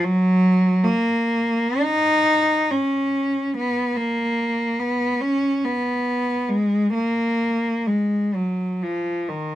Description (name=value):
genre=classical, free, expressive piece for unaccompanied cello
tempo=58-76 BPM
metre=4/4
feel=rubato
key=unclear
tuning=A4 = 438 Hz
part: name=rich cello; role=solo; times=0.0-9.6 s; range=D#3 to D#4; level=-19 LUFS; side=equal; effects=none
room=moderate studio reverb, RT60 0.6 s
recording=none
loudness=-19 LUFS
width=side -13 dB against mid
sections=0.0-9.6 A section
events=none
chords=none